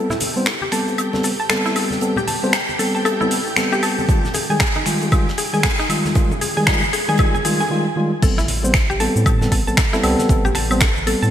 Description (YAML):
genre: deep house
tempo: 116 BPM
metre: 4/4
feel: swing 60% on 16ths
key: unclear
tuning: A4 = 440 Hz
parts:
  - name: mallet-like synth pluck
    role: arpeggios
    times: 0.0-11.3 s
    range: Eb4 to A5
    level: -24 LUFS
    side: left 1 dB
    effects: chorus, sidechain pumping, ping-pong delay
  - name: mellow tine electric piano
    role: stabs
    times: 0.0-11.3 s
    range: Eb3 to C5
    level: -21 LUFS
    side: equal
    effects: sidechain pumping, low-pass filter, ping-pong delay
  - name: string machine, violins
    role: texture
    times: 0.0-7.7 s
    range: G4 to G5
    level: -31 LUFS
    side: right 1 dB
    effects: ensemble chorus, sidechain pumping
  - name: deep house drum kit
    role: drums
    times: 0.1-11.3 s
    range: crash cymbal, finger snaps, hi-hat, shaker, woodblock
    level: -22 LUFS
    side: equal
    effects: overdrive, gated reverb
  - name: gated 80s drum kit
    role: drums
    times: 0.1-11.2 s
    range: hi-hat, snare drum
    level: -32 LUFS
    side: right 2 dB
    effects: high-pass filter on hats, high-pass filter on snare, high-pass filter on room, gated reverb
  - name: congas and bongos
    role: percussion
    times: 0.1-11.0 s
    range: none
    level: -31 LUFS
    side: left 2 dB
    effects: none
  - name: electronic kick drum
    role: drums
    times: 4.1-10.9 s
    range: none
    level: -18 LUFS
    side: equal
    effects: overdrive
  - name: round analog bass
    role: bass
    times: 8.2-11.3 s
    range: A1 to A2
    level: -22 LUFS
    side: equal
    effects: sidechain pumping
room: moderate lush hall reverb, RT60 2.5 s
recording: bright 1980s-style digital production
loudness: -16 LUFS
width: side -10 dB against mid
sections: 0.0-8.2 A section; 8.2-11.3 B section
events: build-up 0.0-8.2; filter sweep on tine electric piano 0.0-8.2; filter sweep on synth arpeggio sound 0.0-8.2; break 7.7-8.2; drop 8.2-11.3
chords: 0.0 Am9; 4.1 Fm9; 8.2 Am9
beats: 0.47 0.98 1.50 | 2.02 2.54 3.05 3.57 | 4.09 4.60 5.12 5.64 | 6.16 6.67 7.19 7.71 | 8.22 8.74 9.26 9.78 | 10.29 10.81